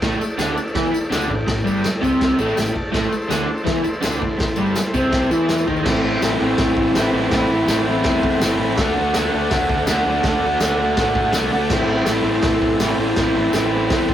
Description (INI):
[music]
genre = garage rock duo or trio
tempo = 164 BPM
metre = 4/4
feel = straight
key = A minor, A dorian from 5.9 s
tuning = A4 = 439 Hz
[part]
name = overdriven combo organ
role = sustained chords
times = 0.0-14.1 s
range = E4 to C6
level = -28 LUFS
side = left 1 dB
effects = none
[part]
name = raw garage guitar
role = riff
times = 0.0-14.1 s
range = G2 to F#4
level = -18 LUFS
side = equal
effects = overdrive
[part]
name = fuzz fingered electric bass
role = bass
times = 0.0-14.1 s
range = G1 to A2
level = -27 LUFS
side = equal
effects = overdrive
[part]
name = vintage drum kit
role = drums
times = 0.0-14.1 s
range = crash cymbal, hi-hat, kick drum, snare drum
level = -23 LUFS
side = equal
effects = none
[part]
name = tambourine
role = percussion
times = 0.1-13.6 s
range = none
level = -35 LUFS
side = left 2 dB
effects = none
[sound]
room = moderate small room reverb, RT60 0.5 s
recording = rough rehearsal-room recording, warm saturation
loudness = -16 LUFS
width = side -11 dB against mid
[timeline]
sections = 0.0-5.9 A section; 5.9-14.1 B section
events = transistor combo organ fill 2.2-2.9, 13.9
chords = 0.0 Am; 8.8 D; 11.7 Am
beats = | 0.02 0.39 0.75 1.12 | 1.48 1.85 2.21 2.58 | 2.94 3.31 3.67 4.04 | 4.40 4.77 5.13 5.50 | 5.86 6.23 6.59 6.96 | 7.32 7.68 8.05 8.41 | 8.78 9.15 9.51 9.88 | 10.24 10.61 10.97 11.34 | 11.71 12.07 12.44 12.80 | 13.17 13.54 13.90